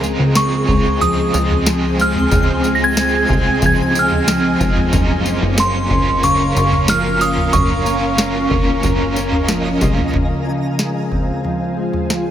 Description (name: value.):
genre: dream pop.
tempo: 92 BPM.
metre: 4/4.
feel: straight.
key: Db major.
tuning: A4 = 440 Hz.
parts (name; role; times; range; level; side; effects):
cranked stack guitar; accompaniment; 0.0-10.2 s; Db3 to F4; -24 LUFS; right 3 dB; overdrive, tremolo, wide subtle chorus.
granular cloud pad; sustained chords; 0.0-12.3 s; C4 to Bb5; -21 LUFS; equal; built-in reverb.
mellow electric guitar; arpeggios; 0.0-12.3 s; Gb2 to Db4; -21 LUFS; left 1 dB; wide subtle chorus, digital delay.
plucky analog bass; bass; 0.0-10.1 s; F1 to Db2; -21 LUFS; equal; none.
booming analog drum machine; drums; 0.0-12.3 s; kick drum, snare drum, tambourine, toms; -20 LUFS; equal; none.
glassy synth bell; melody; 0.4-9.4 s; C6 to Bb6; -19 LUFS; right 1 dB; chorus, digital delay.
twinkling granular texture; texture; 1.0-10.8 s; Eb5 to C6; -32 LUFS; left 1 dB; built-in reverb, digital delay.
room: light reverb.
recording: none.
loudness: -14 LUFS.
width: side -10 dB against mid.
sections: 0.0-10.1 A section; 10.1-12.3 B section.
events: none.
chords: 0.0 Dbmaj7; 4.9 Gbmaj7; 10.1 Dbmaj7.